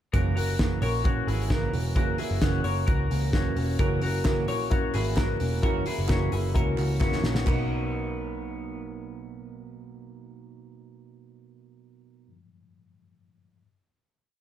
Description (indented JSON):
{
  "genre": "jangly indie pop",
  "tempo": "131 BPM",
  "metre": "4/4",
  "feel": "straight",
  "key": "B major",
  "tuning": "A4 = 441 Hz",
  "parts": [
    { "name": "fingerpicked plugged-in steel-string acoustic guitar", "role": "accompaniment", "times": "0.1-12.4 s", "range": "F#2 to F#4", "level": "-33 LUFS", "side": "right 7 dB", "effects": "none" },
    { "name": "twelve-string electric guitar", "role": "arpeggios", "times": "0.1-8.8 s", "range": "B3 to C#5", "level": "-32 LUFS", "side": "left 5 dB", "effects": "spring reverb, analog delay" },
    { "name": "vintage muted picked electric bass", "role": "bass", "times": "0.1-12.3 s", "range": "E1 to C#2", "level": "-29 LUFS", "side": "equal", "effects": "none" },
    { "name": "loose indie drum kit", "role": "drums", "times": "0.1-7.6 s", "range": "crash cymbal, hi-hat, kick drum, snare drum", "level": "-27 LUFS", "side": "equal", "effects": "none" },
    { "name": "reed electric piano", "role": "accompaniment", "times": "3.8-13.6 s", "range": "B3 to A#4", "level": "-34 LUFS", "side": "left 4 dB", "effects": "none" },
    { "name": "group handclap", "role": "percussion", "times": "4.3-7.7 s", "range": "none", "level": "-43 LUFS", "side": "right 8 dB", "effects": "none" }
  ],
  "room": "light reverb",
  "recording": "none",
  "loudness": "-24 LUFS",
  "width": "side -11 dB against mid",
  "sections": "0.1-7.5 pre-chorus; 7.5-11.1 final chord",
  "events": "drum fill 7.0-7.5",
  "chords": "0.1 F#7; 7.5 Bmaj7"
}